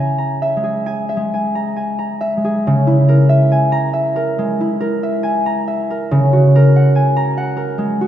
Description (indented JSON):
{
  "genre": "classical, solo harp piece",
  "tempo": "65-72 BPM",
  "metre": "4/4",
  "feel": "rubato",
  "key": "C# dorian",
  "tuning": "A4 = 441 Hz",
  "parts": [
    { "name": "concert harp", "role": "solo", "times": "0.0-8.1 s", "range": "C#3 to C#6", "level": "-13 LUFS", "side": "equal", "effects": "none" }
  ],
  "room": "wet church reverb, RT60 3.0 s",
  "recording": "heard from further back in the room",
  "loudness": "-13 LUFS",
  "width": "side -11 dB against mid",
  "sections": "0.0-2.6 A section; 2.6-8.1 B section",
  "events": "none",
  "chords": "0.0 C#m6; 6.1 F#add9/C#",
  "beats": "0.85 1.76 | 2.64 3.51 4.38 5.25 | 6.11 6.96 7.79"
}